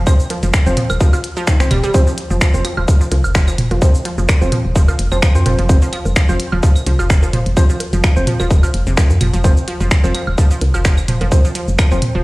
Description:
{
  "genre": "minimal techno",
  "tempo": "128 BPM",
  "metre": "4/4",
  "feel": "swing 54% on 16ths",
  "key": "unclear",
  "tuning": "A4 = 443 Hz",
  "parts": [
    { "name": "resonant blip pluck", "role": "riff", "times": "0.0-12.2 s", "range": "C3 to G3", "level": "-23 LUFS", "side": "right 1 dB", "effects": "chorus, sidechain pumping, dub echo" },
    { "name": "woody FM bass", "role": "bass", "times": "0.0-12.2 s", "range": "Eb1 to F2", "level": "-17 LUFS", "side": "equal", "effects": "sidechain pumping" },
    { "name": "percussive organ stab", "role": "stabs", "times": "0.1-12.0 s", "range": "F3 to C5", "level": "-24 LUFS", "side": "equal", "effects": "analog chorus, digital delay" },
    { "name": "electronic kick drum", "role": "drums", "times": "0.1-11.9 s", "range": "none", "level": "-11 LUFS", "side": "equal", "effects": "none" },
    { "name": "minimal click drum kit", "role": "drums", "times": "0.1-12.1 s", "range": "cabasa, finger snaps, hi-hat", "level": "-23 LUFS", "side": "equal", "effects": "none" },
    { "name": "electronic claves, bongos, toms and woodblock", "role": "percussion", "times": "0.1-12.1 s", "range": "none", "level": "-22 LUFS", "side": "right 1 dB", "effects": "digital delay" }
  ],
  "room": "light reverb",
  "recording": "played on a big sound system in a bare room, stone room reverb",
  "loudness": "-12 LUFS",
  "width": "side -21 dB against mid",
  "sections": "0.0-12.2 A section",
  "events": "none",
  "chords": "0.0 F5",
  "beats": "| 0.07 0.54 1.00 1.47 | 1.94 2.41 2.88 3.35 | 3.82 4.29 4.75 5.22 | 5.69 6.16 6.63 7.10 | 7.57 8.04 8.51 8.97 | 9.44 9.91 10.38 10.85 | 11.32 11.79"
}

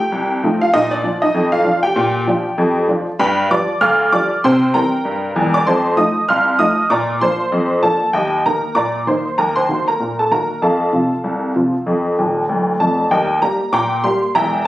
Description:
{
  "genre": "ragtime piano",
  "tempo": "97 BPM",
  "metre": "2/4",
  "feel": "swing 60% on 16ths",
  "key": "unclear",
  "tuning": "A4 = 439 Hz",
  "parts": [
    { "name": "honky-tonk upright piano", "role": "solo", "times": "0.0-14.7 s", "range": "D1 to F6", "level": "-14 LUFS", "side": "equal", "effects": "none" }
  ],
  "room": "wet studio reverb, RT60 0.8 s",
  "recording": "recorded on a phone in the room, club ambience",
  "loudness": "-14 LUFS",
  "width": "side -15 dB against mid",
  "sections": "0.0-13.1 A section; 13.1-14.7 A section",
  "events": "honky-tonk piano fill 12.2-13.1",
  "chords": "0.0 F7; 0.7 Bb; 3.2 G7; 4.4 C7; 5.7 F7; 6.9 Bb; 8.1 Eb; 9.4 Ebm; 10.6 F; 13.1 Eb",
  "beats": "0.12 | 0.74 1.35 | 1.97 2.59 | 3.20 3.82 | 4.44 5.05 | 5.67 6.29 | 6.91 7.53 | 8.14 8.76 | 9.38 10.00 | 10.62 11.24 | 11.87 12.49 | 13.11 13.73 | 14.35"
}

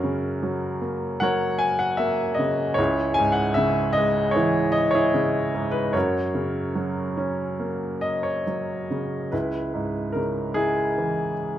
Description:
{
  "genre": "classical, lyrical solo piano",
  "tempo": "67-77 BPM",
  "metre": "4/4",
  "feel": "rubato",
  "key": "C# dorian",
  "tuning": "A4 = 440 Hz",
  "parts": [
    { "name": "clear baby grand piano", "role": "solo", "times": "0.0-11.6 s", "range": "C#2 to G#5", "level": "-22 LUFS", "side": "equal", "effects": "none" }
  ],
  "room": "light reverb",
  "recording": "close, detailed microphones",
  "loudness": "-22 LUFS",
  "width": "side -11 dB against mid",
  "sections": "0.0-9.3 A section; 9.3-11.6 A section",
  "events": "none",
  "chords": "0.0 F#; 2.8 C#m; 6.0 F#; 9.3 C#m",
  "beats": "0.42 1.21 1.99 | 2.79 3.58 4.36 5.15 | 5.95 6.76 7.59 8.46 | 9.32 10.15 10.97"
}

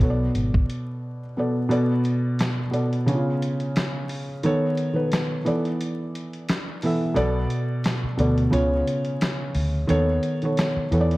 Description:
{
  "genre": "lo-fi hip hop",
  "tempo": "88 BPM",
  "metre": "4/4",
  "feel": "swing 56% on 16ths",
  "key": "unclear",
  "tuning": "A4 = 440 Hz",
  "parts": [
    { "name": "felt-muted upright piano", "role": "accompaniment", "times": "0.0-11.2 s", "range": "B2 to E5", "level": "-22 LUFS", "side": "equal", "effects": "none" },
    { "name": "vintage muted fingered electric bass", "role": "bass", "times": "0.0-0.6, 7.2-11.2 s", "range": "G#1 to E2", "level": "-24 LUFS", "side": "equal", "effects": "none" },
    { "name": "dusty soul sampler-style drum kit", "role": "drums", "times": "0.0-11.2 s", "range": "handclaps, hi-hat, kick drum, snare drum", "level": "-26 LUFS", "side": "equal", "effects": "none" }
  ],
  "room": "moderate spring reverb, RT60 2.3 s",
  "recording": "dark, warm production, vinyl crackle",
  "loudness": "-21 LUFS",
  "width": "side -19 dB against mid",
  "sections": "0.0-1.7 A section; 1.7-11.2 B section",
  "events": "break 1.0-1.7; kick muted 1.7-11.2",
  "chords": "0.0 Bm7; 3.1 C#7; 4.4 B7/D#; 5.5 E7sus4; 7.2 Bm7; 8.5 C#7; 9.9 B7/D#",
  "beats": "0.34 1.02 | 1.70 2.38 3.06 3.75 | 4.43 5.11 5.79 6.47 | 7.15 7.84 8.52 9.20 | 9.88 10.56"
}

